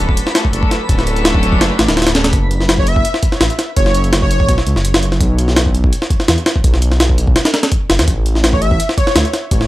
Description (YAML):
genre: drum and bass, jungle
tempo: 167 BPM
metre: 4/4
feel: straight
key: F# minor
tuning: A4 = 440 Hz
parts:
  - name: warm studio string section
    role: sustained chords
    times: 0.0-2.3 s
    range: F#3 to A4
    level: -20 LUFS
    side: left 1 dB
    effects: none
  - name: dark detuned saw bass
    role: bass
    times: 0.0-9.7 s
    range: D1 to E2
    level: -15 LUFS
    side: equal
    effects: tube saturation
  - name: twinkling granular texture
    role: texture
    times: 0.0-2.3 s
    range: B4 to B5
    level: -28 LUFS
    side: left 1 dB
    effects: built-in reverb
  - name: jungle sampler-style drum kit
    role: drums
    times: 0.1-9.7 s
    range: hi-hat, kick drum, snare drum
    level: -14 LUFS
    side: equal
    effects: overdrive, small room ambience
  - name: airy dreamy lead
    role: melody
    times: 2.8-4.5, 8.5-9.2 s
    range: C#5 to E5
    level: -22 LUFS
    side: equal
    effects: chorus, dub echo
room: digital ambience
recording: dry, gritty hardware recording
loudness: -11 LUFS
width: side -16 dB against mid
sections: 0.0-2.3 A section; 2.3-9.7 A section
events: drop 0.0-2.3, 2.3-9.7; kick drops out 1.6-2.3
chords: 0.0 Dmaj7; 2.3 F#5; 5.2 N.C.; 8.1 A5